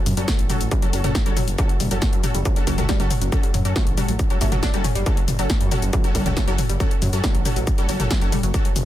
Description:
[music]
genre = driving peak-time techno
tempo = 138 BPM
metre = 4/4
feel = straight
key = F# phrygian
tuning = A4 = 441 Hz
[part]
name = analog pluck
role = riff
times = 0.0-8.7 s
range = F#3 to D4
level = -29 LUFS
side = left 1 dB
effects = chorus, phaser, sidechain pumping, ping-pong delay
[part]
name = detuned saw bass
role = bass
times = 0.1-8.8 s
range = F#1 to F#2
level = -24 LUFS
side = equal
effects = sidechain pumping
[part]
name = punchy analog drum machine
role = drums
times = 0.1-8.8 s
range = hi-hat, shaker, snare drum, toms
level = -26 LUFS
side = left 2 dB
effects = none
[part]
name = rave stab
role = stabs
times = 0.2-8.7 s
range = C#4 to A4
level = -28 LUFS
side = equal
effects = chorus, built-in reverb, sidechain pumping, ping-pong delay
[part]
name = electronic kick drum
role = drums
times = 0.3-8.6 s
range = none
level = -21 LUFS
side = equal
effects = distortion
[sound]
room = little or no reverb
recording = dense, heavily limited modern master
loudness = -18 LUFS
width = side -13 dB against mid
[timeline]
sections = 0.0-8.8 A section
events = none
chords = 0.0 F#m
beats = 0.28 0.71 1.15 | 1.58 2.02 2.45 2.89 | 3.32 3.76 4.19 4.63 | 5.06 5.50 5.93 6.37 | 6.80 7.24 7.67 8.11 | 8.54

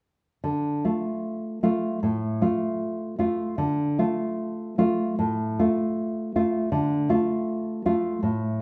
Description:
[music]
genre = classical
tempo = 77 BPM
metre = 4/4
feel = rubato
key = D minor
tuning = A4 = 440 Hz
[part]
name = nylon-string guitar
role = accompaniment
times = 0.4-8.6 s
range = A2 to F4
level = -26 LUFS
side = equal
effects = none
[sound]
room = moderate recital hall reverb, RT60 1.4 s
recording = none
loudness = -26 LUFS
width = mono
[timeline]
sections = 0.4-8.6 A section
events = none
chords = 0.4 Dm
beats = | 0.44 1.24 2.04 2.81 | 3.59 4.39 5.19 5.97 | 6.72 7.47 8.23

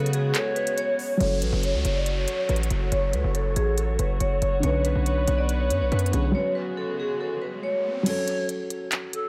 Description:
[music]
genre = hip hop, trap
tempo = 140 BPM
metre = 4/4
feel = half-time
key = F# minor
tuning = A4 = 440 Hz
[part]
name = vibraphone with medium hard mallets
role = melody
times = 0.0-8.0 s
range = G#4 to D5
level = -31 LUFS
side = equal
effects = low-pass filter, delay
[part]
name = felt-muted upright piano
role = accompaniment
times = 0.0-9.3 s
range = D3 to B4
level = -33 LUFS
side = equal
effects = low-pass filter
[part]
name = rich chamber string section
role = sustained chords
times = 0.0-8.0 s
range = C#3 to C#5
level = -36 LUFS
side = equal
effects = low-pass filter
[part]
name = hard-hitting 808-style bass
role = bass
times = 0.0-6.3 s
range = F#1 to C#3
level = -27 LUFS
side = equal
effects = none
[part]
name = trap drum kit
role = drums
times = 0.1-9.2 s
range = crash cymbal, handclaps, hi-hat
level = -34 LUFS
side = equal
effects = none
[part]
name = bright reedy polished pan flute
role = second line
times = 0.4-1.2, 8.1-9.3 s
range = A4 to C#5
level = -33 LUFS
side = equal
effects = delay
[part]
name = downlifter and riser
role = sound effects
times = 1.2-8.1 s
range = none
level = -40 LUFS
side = equal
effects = none
[sound]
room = studio ambience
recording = none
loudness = -25 LUFS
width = mono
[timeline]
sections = 0.0-1.2 A section; 1.2-8.1 B section; 8.1-9.3 C section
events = kick muted 0.3-1.2, 8.1-9.3; filter sweep 1.2-8.1; break 6.3-8.1; riser 7.0-8.1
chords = 0.0 C#7sus4; 1.2 F#m; 4.6 Bmadd9; 6.3 C#7sus4; 8.1 F#m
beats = 0.35 0.78 | 1.21 1.63 2.06 2.49 | 2.92 3.35 3.78 4.21 | 4.63 5.06 5.49 5.92 | 6.35 6.78 7.21 7.63 | 8.06 8.49 8.92

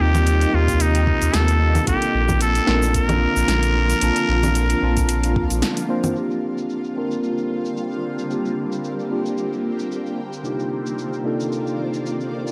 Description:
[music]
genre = sunset chillout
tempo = 112 BPM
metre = 4/4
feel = swing 55% on 16ths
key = Bb major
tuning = A4 = 440 Hz
[part]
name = trumpet with straight mute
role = melody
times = 0.0-5.6 s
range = Eb4 to Bb4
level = -25 LUFS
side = equal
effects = tape echo
[part]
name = mellow tine electric piano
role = accompaniment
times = 0.0-12.5 s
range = C3 to A5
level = -26 LUFS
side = equal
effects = analog delay
[part]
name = shimmering ambient pad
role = sustained chords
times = 0.0-12.5 s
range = C3 to D5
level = -31 LUFS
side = equal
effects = chorus, built-in reverb, phaser
[part]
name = warm sub bass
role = bass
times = 0.0-5.6 s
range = Bb1 to Eb2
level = -22 LUFS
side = equal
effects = none
[part]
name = deep house drum kit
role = drums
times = 0.1-12.5 s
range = congas, hi-hat, shaker, snare drum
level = -28 LUFS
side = equal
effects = overdrive, low-pass filter on hats, low-pass filter on perc, low-pass filter on snare, low-pass filter on room
[part]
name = electronic kick drum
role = drums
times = 0.7-5.5 s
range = none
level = -26 LUFS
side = equal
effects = none
[sound]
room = light reverb, digital ambience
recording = dry, gritty hardware recording, transformer saturation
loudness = -21 LUFS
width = mono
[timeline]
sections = 0.0-6.2 A section; 6.2-12.5 B section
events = none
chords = 0.0 Eb6; 1.9 Bbmaj7; 6.2 Bb69; 10.2 Cm11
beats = 0.27 0.81 1.34 | 1.88 2.41 2.95 3.48 | 4.02 4.56 5.09 5.63 | 6.16 6.70 7.24 7.77 | 8.31 8.84 9.38 9.91 | 10.45 10.98 11.52 12.06

